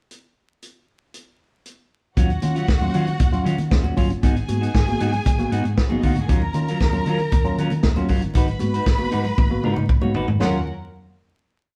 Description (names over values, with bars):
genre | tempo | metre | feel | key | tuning
disco | 116 BPM | 4/4 | straight | Eb minor | A4 = 441 Hz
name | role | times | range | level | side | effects
vintage drum kit | drums | 0.1-10.5 s | hi-hat, kick drum, snare drum, toms | -23 LUFS | equal | vintage 12-bit sampler grit
warm studio violin section | second line | 2.2-10.7 s | Cb4 to Cb6 | -31 LUFS | equal | none
clean electric guitar | accompaniment | 2.2-10.6 s | Gb3 to Db5 | -29 LUFS | equal | none
tine electric piano | accompaniment | 2.2-10.6 s | Ab2 to Gb4 | -30 LUFS | equal | none
hollow-body short-scale fingered electric bass | bass | 2.2-10.7 s | G1 to Eb3 | -27 LUFS | equal | none
congas | percussion | 2.2-10.6 s | none | -34 LUFS | equal | none
room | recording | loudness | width
wet studio reverb, RT60 0.8 s | band playing live in one room, vinyl crackle | -20 LUFS | mono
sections
0.1-2.2 pickup bar; 2.2-10.4 groove; 10.4-11.8 final chord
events
drum fill 9.4-10.4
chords
0.1 N.C.; 2.2 Ebm9; 4.2 Abm7; 6.3 Ebm9; 8.3 Abm7; 10.4 Ebm9